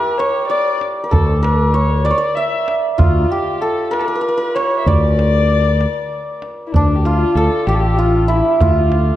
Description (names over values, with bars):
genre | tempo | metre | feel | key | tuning
Persian modal ensemble | 64 BPM (dotted quarters) | 6/8 | straight | D avaz esfahan | A4 = 440 Hz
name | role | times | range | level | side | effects
santur | melody | 0.0-9.2 s | D4 to E5 | -18 LUFS | right 1 dB | none
dark kamancheh | second line | 0.0-9.2 s | D4 to E5 | -21 LUFS | left 5 dB | none
tombak | percussion | 0.2-9.1 s | none | -17 LUFS | right 1 dB | none
fretless electric bass | bass | 1.1-9.1 s | A1 to D2 | -16 LUFS | equal | lush chorus
room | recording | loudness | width
moderate recital hall reverb, RT60 1.4 s | dark, warm production | -13 LUFS | side -13 dB against mid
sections
0.0-6.7 A section; 6.7-9.2 B section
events
none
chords
none